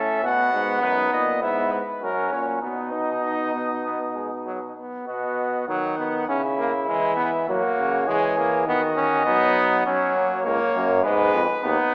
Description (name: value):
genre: classical, imitative canzona for brass ensemble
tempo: 100 BPM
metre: 4/4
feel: straight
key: B major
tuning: A4 = 440 Hz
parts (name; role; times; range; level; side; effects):
- dark trumpet; melody; 0.0-11.9 s; A#4 to F#5; -26 LUFS; left 1 dB; none
- clear flugelhorn; second line; 0.0-11.9 s; A#3 to A4; -27 LUFS; equal; none
- brilliant trombone; accompaniment; 0.0-11.9 s; F#3 to D#4; -24 LUFS; equal; none
- warm euphonium; bass; 0.0-11.8 s; C#2 to F#3; -26 LUFS; equal; none
room: wet concert hall reverb, RT60 1.9 s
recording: small speaker sound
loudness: -20 LUFS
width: side -29 dB against mid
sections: 0.0-5.1 A section; 5.1-11.9 B section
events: none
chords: 0.2 B; 1.4 E/G#; 2.0 F#; 2.6 B; 6.3 C#m; 7.5 F#; 8.7 B/D#; 9.9 F#; 11.0 G#m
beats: | 0.24 0.83 1.42 2.02 | 2.63 3.24 3.85 4.46 | 5.08 5.68 6.29 6.89 | 7.49 8.08 8.67 9.27 | 9.86 10.45 11.04 11.63